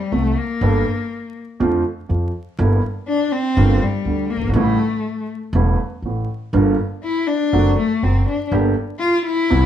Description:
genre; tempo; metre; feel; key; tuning
tango; 122 BPM; 4/4; rubato; unclear; A4 = 440 Hz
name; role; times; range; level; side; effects
warm cello; second line; 0.0-9.7 s; G3 to F4; -20 LUFS; left 3 dB; none
warm grand piano; accompaniment; 0.1-9.7 s; E1 to A4; -20 LUFS; right 3 dB; none
upright bass; bass; 0.1-9.7 s; E1 to F2; -19 LUFS; equal; none
room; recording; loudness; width
moderate studio reverb, RT60 0.7 s; band playing live in one room, vinyl crackle; -17 LUFS; side -10 dB against mid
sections
0.0-9.7 A section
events
cello solo 0.0-9.7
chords
0.0 F (rootless); 0.6 Gmadd9; 1.6 Dm7/F; 2.6 Em7b5/G; 3.6 Gm7; 4.6 A7; 6.5 Gm7; 7.5 D7/F#; 8.5 Gm

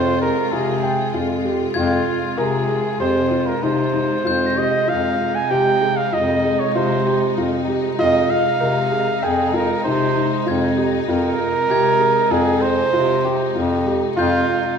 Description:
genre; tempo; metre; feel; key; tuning
contemporary instrumental, chamber music in an uneven meter; 97 BPM; 5/4; straight; F minor; A4 = 441 Hz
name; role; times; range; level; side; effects
warm flugelhorn; melody; 0.0-14.8 s; F4 to Ab5; -20 LUFS; right 3 dB; none
rich studio string section; sustained chords; 0.0-14.8 s; C3 to F4; -26 LUFS; equal; none
felt-muted upright piano; arpeggios; 0.0-14.6 s; Eb4 to G5; -23 LUFS; right 1 dB; none
breathy bass clarinet; bass; 0.0-14.4 s; F2 to C3; -22 LUFS; left 2 dB; none
glockenspiel with soft plastic mallets; texture; 1.7-5.4, 10.5-14.8 s; G6 to Bb6; -29 LUFS; left 3 dB; none
room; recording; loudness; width
wet scoring stage reverb, RT60 1.9 s; recorded in a church or concert hall; -16 LUFS; side -6 dB against mid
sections
0.0-14.8 A section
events
none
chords
0.0 Fm9

